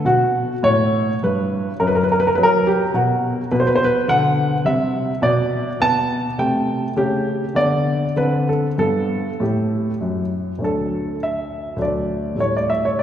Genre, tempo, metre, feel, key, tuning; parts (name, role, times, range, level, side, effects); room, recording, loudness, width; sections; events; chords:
classical, baroque-style suite movement for grand piano; 103 BPM; 3/4; rubato; G major from 3.5 s; A4 = 439 Hz
warm baby grand piano; solo; 0.0-13.0 s; D2 to A5; -17 LUFS; equal
wet church reverb, RT60 2.9 s; heard from further back in the room; -17 LUFS; side -10 dB against mid
0.0-10.6 A section; 10.6-13.0 A section
0.1 B5; 1.8 F#5; 2.9 N.C.; 3.5 Bm; 4.6 C; 5.2 N.C.; 6.4 Am7/C; 7.0 A7/C#; 7.5 Bm/D; 8.2 D5; 8.8 G; 10.6 D; 12.4 A5